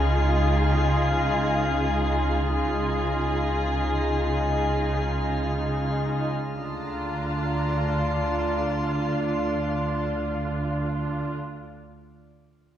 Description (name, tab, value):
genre	cinematic, suspense film score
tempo	free time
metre	none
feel	none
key	unclear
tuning	A4 = 437 Hz
part	muted chamber violin section	melody	0.0-11.3 s	F4 to G#4	-31 LUFS	left 3 dB	none
part	muted symphonic viola section	accompaniment	0.0-11.3 s	D4 to E#4	-29 LUFS	equal	none
part	drifting glass-harmonics texture	sustained chords	0.0-11.3 s	F4 to E#5	-31 LUFS	equal	chorus, built-in reverb
part	muted symphonic cello section	bass	0.0-11.3 s	C#3 to D3	-30 LUFS	right 1 dB	none
part	muted symphonic double bass section	bass	0.0-11.3 s	C#2 to D2	-28 LUFS	right 1 dB	none
part	muted symphonic violin section	texture	6.6-10.0 s	A5 to Bb5	-37 LUFS	left 5 dB	none
room	wet recital hall reverb, RT60 1.6 s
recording	heard from further back in the room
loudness	-23 LUFS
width	side -10 dB against mid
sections	0.0-6.6 A section; 6.6-10.6 B section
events	none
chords	0.0 C#add9; 6.6 Dm